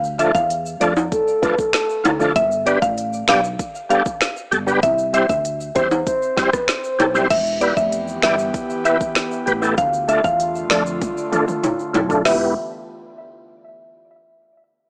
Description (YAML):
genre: dancehall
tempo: 97 BPM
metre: 4/4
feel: straight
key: E phrygian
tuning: A4 = 439 Hz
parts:
  - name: woody fretless electric bass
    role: bass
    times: 0.0-12.5 s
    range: E1 to F2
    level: -31 LUFS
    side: equal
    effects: analog chorus
  - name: egg shaker and timbales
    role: percussion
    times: 0.0-12.5 s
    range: none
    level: -28 LUFS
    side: equal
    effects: none
  - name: mallet-like synth pluck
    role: melody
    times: 0.2-12.5 s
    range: C5 to F5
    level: -23 LUFS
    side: equal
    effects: chorus, low-pass filter, analog delay
  - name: overdriven tonewheel organ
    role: accompaniment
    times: 0.2-12.5 s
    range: F3 to D5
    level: -22 LUFS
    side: equal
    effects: chorus vibrato, fast rotary speaker, low-pass filter
  - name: deep house drum kit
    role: drums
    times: 0.2-12.4 s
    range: crash cymbal, finger snaps, hi-hat, kick drum, rim click, snare drum, toms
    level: -25 LUFS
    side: equal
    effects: none
  - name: soft octave-layered synth lead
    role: second line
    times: 1.1-2.2, 6.1-7.3 s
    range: A4 to C5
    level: -24 LUFS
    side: equal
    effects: chorus, phaser, analog delay
  - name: airy breathy pad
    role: sustained chords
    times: 7.6-12.5 s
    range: D3 to G4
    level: -30 LUFS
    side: equal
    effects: chorus, sidechain pumping, low-pass filter
room: digital ambience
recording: dry, gritty hardware recording, small speaker sound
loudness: -19 LUFS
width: mono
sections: 0.0-7.3 A section; 7.3-12.3 B section; 12.3-14.7 C section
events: filter sweep 7.3-12.3; drum fill 11.0-12.3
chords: 0.0 Dm; 2.4 G; 4.8 C; 7.3 Em; 9.8 Dm; 12.3 Em